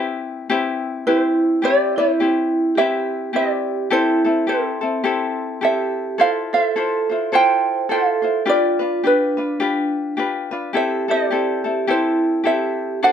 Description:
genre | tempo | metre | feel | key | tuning
Hawaiian | 106 BPM | 4/4 | swing 59% on 8ths | C major | A4 = 440 Hz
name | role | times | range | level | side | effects
ukulele | melody | 0.0-13.1 s | A4 to G5 | -19 LUFS | right 2 dB | plate reverb
ukulele | accompaniment | 0.0-13.1 s | C4 to C5 | -22 LUFS | left 5 dB | none
vibraphone with medium mallets | second line | 1.1-13.1 s | C4 to C5 | -21 LUFS | right 3 dB | none
room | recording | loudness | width
moderate studio reverb, RT60 0.5 s | none | -17 LUFS | side -8 dB against mid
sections
0.0-13.1 A section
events
none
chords
0.0 Cmaj7; 3.9 Am7; 6.2 Fmaj7; 8.5 G7; 10.7 C6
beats
0.50 1.07 | 1.64 2.21 2.78 3.35 | 3.91 4.48 5.05 5.62 | 6.19 6.76 7.33 7.90 | 8.46 9.03 9.60 10.17 | 10.74 11.31 11.88 12.45 | 13.02

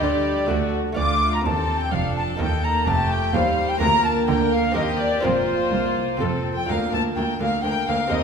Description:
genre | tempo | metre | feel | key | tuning
classical, baroque-style concerto movement with solo episodes | 126 BPM | 3/4 | straight | Bb major | A4 = 440 Hz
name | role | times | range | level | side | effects
mellow hollow silver concert flute | melody | 0.0-8.2 s | C5 to D6 | -25 LUFS | left 1 dB | none
warm chamber violin section | melody | 0.0-8.2 s | Bb4 to D6 | -29 LUFS | left 2 dB | none
warm chamber violin section | second line | 0.0-8.2 s | F4 to A5 | -27 LUFS | left 4 dB | none
lute | accompaniment | 0.0-8.2 s | D2 to D5 | -30 LUFS | equal | none
warm chamber viola section | accompaniment | 0.0-8.2 s | G3 to D4 | -28 LUFS | right 3 dB | none
rich chamber double bass section | bass | 0.0-6.6 s | F1 to Eb2 | -28 LUFS | right 2 dB | none
warm chamber cello section | bass | 0.0-8.2 s | C2 to D3 | -27 LUFS | right 3 dB | none
room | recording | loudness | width
wet concert hall reverb, RT60 2.3 s | minimal, uncompressed stereo recording | -19 LUFS | side -6 dB against mid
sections
0.0-6.7 A section; 6.7-8.2 A section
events
none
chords
0.5 D; 1.0 Dm; 2.4 Eb; 3.8 Bb/D; 4.8 Cm7/Eb; 5.2 Fsus4; 6.2 F; 6.7 Bb/D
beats
0.02 0.49 | 0.97 1.45 1.92 | 2.40 2.87 3.34 | 3.81 4.29 4.76 | 5.24 5.72 6.20 | 6.69 7.16 7.64 | 8.12

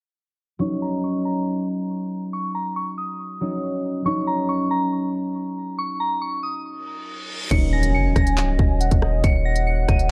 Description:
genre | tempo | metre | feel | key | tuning
hip hop, drill | 139 BPM | 4/4 | half-time | Eb minor | A4 = 441 Hz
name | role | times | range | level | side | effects
soft synth bell | melody | 0.6-10.1 s | Bb5 to Eb7 | -31 LUFS | equal | chorus, phaser, low-pass filter, delay
concert harp | accompaniment | 0.6-10.1 s | Gb3 to Eb4 | -28 LUFS | equal | low-pass filter
reverse cymbal and impact | sound effects | 6.9-9.2 s | none | -36 LUFS | equal | none
mellow French horn section | sustained chords | 7.5-10.1 s | Bb3 to Eb5 | -33 LUFS | equal | none
long sustained 808-style bass | bass | 7.5-10.1 s | Db1 to Gb1 | -23 LUFS | equal | none
drill drum kit | drums | 7.5-10.1 s | crash cymbal, handclaps, hi-hat, kick drum, rim click | -23 LUFS | equal | none
warm velvety synth lead | second line | 7.7-10.1 s | Eb5 to Ab5 | -31 LUFS | equal | chorus, delay
room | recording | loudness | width
digital ambience | dark, warm production | -23 LUFS | mono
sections
0.6-7.5 A section; 7.5-10.1 B section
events
filter sweep 0.6-7.5; reverse cymbal 6.9-7.5; impact 7.5-9.2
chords
0.6 Ebm7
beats
| 0.60 1.04 1.47 1.90 | 2.33 2.76 3.19 3.63 | 4.06 4.49 4.92 5.35 | 5.78 6.22 6.65 7.08 | 7.51 7.94 8.37 8.81 | 9.24 9.67 10.10

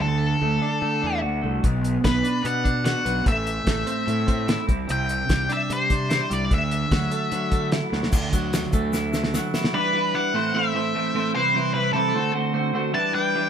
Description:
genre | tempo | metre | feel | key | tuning
indie rock | 148 BPM | 4/4 | straight | unclear | A4 = 440 Hz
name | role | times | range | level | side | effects
octave-fuzz lead guitar | melody | 0.0-13.5 s | A4 to A5 | -25 LUFS | left 2 dB | distortion
twelve-string electric guitar | riff | 0.0-13.5 s | A2 to C5 | -24 LUFS | right 2 dB | none
fuzz fingered electric bass | bass | 0.0-9.4 s | A1 to D3 | -28 LUFS | left 1 dB | overdrive
cloth-damped thuddy drum kit | drums | 1.6-9.7 s | crash cymbal, hi-hat, kick drum, snare drum | -24 LUFS | equal | none
egg shaker | percussion | 8.1-9.6 s | none | -37 LUFS | left 8 dB | none
room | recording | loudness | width
light reverb | band playing live in one room | -20 LUFS | side -8 dB against mid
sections
0.0-8.1 A section; 8.1-9.7 B section; 9.7-13.5 C section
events
drum fill 7.9, 8.9-9.7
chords
0.0 D; 1.6 Bm; 3.3 Am; 4.7 Cadd9; 6.5 Dadd9; 9.7 Em7; 10.3 Am; 11.3 Cmaj7; 12.1 D7; 12.9 Em7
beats
| 0.02 0.42 0.83 1.24 | 1.64 2.05 2.45 2.86 | 3.27 3.67 4.08 4.48 | 4.89 5.29 5.70 6.10 | 6.51 6.91 7.32 7.72 | 8.13 8.53 8.94 9.34 | 9.74 10.14 10.54 10.94 | 11.35 11.74 12.15 12.55 | 12.95 13.35

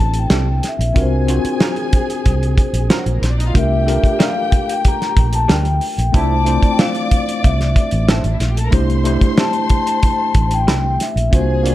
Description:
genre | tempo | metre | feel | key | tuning
lush 1970s-style soul | 93 BPM | 4/4 | straight | C mixolydian | A4 = 441 Hz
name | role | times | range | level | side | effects
vibraphone with soft mallets | melody | 0.0-11.7 s | C5 to Bb5 | -21 LUFS | left 3 dB | none
dark symphonic string section | second line | 0.0-11.7 s | F#3 to D6 | -27 LUFS | left 1 dB | none
tine electric piano | accompaniment | 0.0-11.7 s | A3 to D5 | -22 LUFS | left 1 dB | overdrive, fast stereo tremolo
vintage muted fingered electric bass | bass | 0.0-11.7 s | A1 to D2 | -17 LUFS | equal | none
cloth-damped thuddy drum kit | drums | 0.1-11.7 s | hi-hat, kick drum, snare drum | -16 LUFS | equal | none
electric guitar through a small old amp | riff | 0.3-10.8 s | F3 to A#4 | -26 LUFS | right 5 dB | tremolo
mellow trombone section | stabs | 6.1-6.3 s | C3 to E4 | -27 LUFS | right 6 dB | none
room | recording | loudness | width
little or no reverb | dark, warm production | -13 LUFS | side -14 dB against mid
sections
0.0-11.7 A section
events
band accent 6.1-8.7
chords
0.0 C6; 1.0 D7alt/C; 3.5 Gm7; 6.1 Dm9/C; 8.7 C6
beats
0.31 | 0.95 1.60 2.25 2.90 | 3.54 4.19 4.84 5.49 | 6.14 6.79 7.43 8.08 | 8.73 9.38 10.03 10.68 | 11.32

